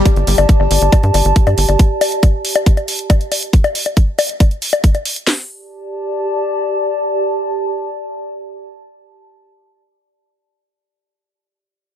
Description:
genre	psychedelic trance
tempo	138 BPM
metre	4/4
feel	straight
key	unclear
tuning	A4 = 439 Hz
part	tight sequencer bass	bass	0.0-1.8 s	G1 to G2	-14 LUFS	equal	none
part	warbly tape-like pad	texture	0.0-9.5 s	G4 to A5	-19 LUFS	equal	chorus, built-in reverb, sidechain pumping
part	drum and bass drum kit	drums	0.1-5.4 s	hi-hat, kick drum, snare drum	-11 LUFS	equal	none
part	electronic hi-hat and bongos	drums	0.1-5.2 s	none	-18 LUFS	left 4 dB	overdrive
room	light reverb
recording	none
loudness	-12 LUFS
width	side -10 dB against mid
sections	0.0-5.3 A section; 5.3-8.8 B section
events	none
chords	0.0 G5

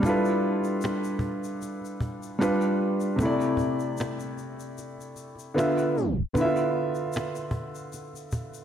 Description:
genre	lo-fi hip hop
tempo	76 BPM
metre	4/4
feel	swing 55% on 16ths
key	D dorian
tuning	A4 = 439 Hz
part	felt-muted upright piano	accompaniment	0.0-8.6 s	C3 to E5	-26 LUFS	equal	cassette tape
part	cajon	drums	0.0-8.5 s	none	-34 LUFS	equal	none
part	tube shaker	percussion	0.1-8.6 s	none	-49 LUFS	left 9 dB	none
room	wet lush hall reverb, RT60 2.4 s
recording	dreamy mix soaked in reverb, tape stop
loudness	-25 LUFS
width	side -9 dB against mid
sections	0.0-6.3 A section; 6.3-8.6 B section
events	kick muted 4.8-6.3; tape stop 6.0-6.3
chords	0.0 G13; 2.4 G7; 3.2 C69; 5.6 Dm69

